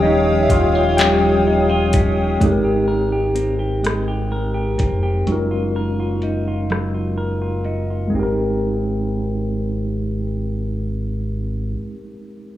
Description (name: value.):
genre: slow six-eight R&B.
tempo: 42 BPM (dotted quarters).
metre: 6/8.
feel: straight.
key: Ab major.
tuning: A4 = 445 Hz.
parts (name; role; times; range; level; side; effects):
clean electric guitar; second line; 0.0-12.1 s; Eb3 to Bb4; -25 LUFS; right 2 dB; none.
mellow tine electric piano; accompaniment; 0.0-12.6 s; F3 to G5; -20 LUFS; left 1 dB; fast stereo tremolo, slapback echo.
hollow soft pad; sustained chords; 0.0-2.4 s; Db5 to Eb6; -23 LUFS; left 2 dB; chorus.
sub bass with octave; bass; 0.0-11.7 s; Eb1 to Ab1; -23 LUFS; equal; none.
smooth R&B drum kit; drums; 0.5-7.9 s; handclaps, hi-hat, kick drum, rim click; -20 LUFS; equal; none.
room: digital ambience.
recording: live gig heard through the venue's PA, club ambience, low-pass filter, small room ambience.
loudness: -17 LUFS.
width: side -13 dB against mid.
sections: 0.0-2.4 A section; 2.4-8.1 B section; 8.1-11.0 C section.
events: tine electric piano solo 0.0-2.4; break 5.3-8.1.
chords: 0.0 Eb9; 2.4 Abmaj9; 5.3 Gbmaj13; 8.1 Abmaj9.